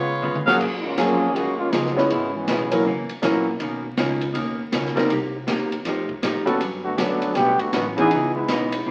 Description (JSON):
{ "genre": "jazz, big band swing", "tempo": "160 BPM", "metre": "4/4", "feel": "swing 64% on 8ths", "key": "F# major", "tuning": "A4 = 440 Hz", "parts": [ { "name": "archtop guitar, miked and amplified", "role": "accompaniment", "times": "0.0-8.9 s", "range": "F#2 to G#4", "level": "-30 LUFS", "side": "equal", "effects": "none" }, { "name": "upright bass", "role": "bass", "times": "0.0-8.9 s", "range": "F#1 to A2", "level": "-32 LUFS", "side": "equal", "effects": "none" }, { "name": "swinging big-band drum kit", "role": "drums", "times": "0.2-8.9 s", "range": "crash cymbal, hi-hat, kick drum, ride cymbal, snare drum, toms", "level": "-31 LUFS", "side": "equal", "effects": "none" }, { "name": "clear concert grand piano", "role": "accompaniment", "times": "0.5-8.1 s", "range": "E3 to C#5", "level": "-24 LUFS", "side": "equal", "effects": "none" }, { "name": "clear trumpet section", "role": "stabs", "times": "0.5-0.6 s", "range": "Gb4 to F5", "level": "-21 LUFS", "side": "equal", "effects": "none" }, { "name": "bright trombone section", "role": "second line", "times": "0.8-3.1, 6.8-8.9 s", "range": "C#3 to A4", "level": "-25 LUFS", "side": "equal", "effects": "none" } ], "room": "wet small room reverb, RT60 0.5 s", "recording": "very old 78 rpm record, vinyl crackle", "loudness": "-22 LUFS", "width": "mono", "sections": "0.6-8.9 A section", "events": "drum fill 0.2-0.6; trombone section solo 0.6-8.9", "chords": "0.0 Db7; 0.6 F#maj9; 2.1 C#m7; 2.8 F#7; 3.6 Bmaj9; 5.1 Cm7; 5.8 F9; 6.6 Gmaj9#11; 8.1 C#m9", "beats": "0.23 | 0.60 0.98 1.35 1.73 | 2.10 2.47 2.85 3.22 | 3.60 3.97 4.34 4.72 | 5.09 5.47 5.84 6.22 | 6.60 6.97 7.35 7.72 | 8.10 8.48 8.85" }